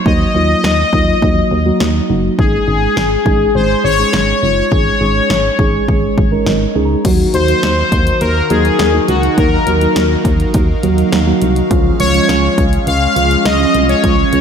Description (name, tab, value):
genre	synth-pop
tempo	103 BPM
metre	4/4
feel	straight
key	unclear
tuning	A4 = 440 Hz
part	analog synth brass	melody	0.1-14.4 s	Gb4 to F5	-16 LUFS	left 3 dB	chorus, ping-pong delay
part	muted felt-like synth keys	accompaniment	0.1-14.4 s	F3 to Bb5	-17 LUFS	right 2 dB	chorus
part	solid FM bass	bass	0.1-14.4 s	Gb1 to Eb2	-17 LUFS	equal	none
part	punchy analog drum machine	drums	0.1-14.4 s	crash cymbal, hi-hat, kick drum, snare drum	-17 LUFS	equal	none
part	phased analog pad	sustained chords	7.0-14.4 s	Eb3 to F5	-19 LUFS	right 2 dB	phaser, chorus
room	moderate lush hall reverb, RT60 1.8 s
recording	dreamy mix soaked in reverb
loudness	-10 LUFS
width	side -7 dB against mid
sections	0.0-7.0 A section; 7.0-14.4 B section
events	synth keys fill 6.2-7.0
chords	0.0 Ebmadd9; 2.4 Absus4; 7.0 Ebmadd9; 11.7 Db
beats	| 0.06 0.64 1.22 1.80 | 2.39 2.97 3.55 4.13 | 4.72 5.30 5.88 6.46 | 7.05 7.63 8.21 8.80 | 9.38 9.96 10.54 11.13 | 11.71 12.29 12.87 13.46 | 14.04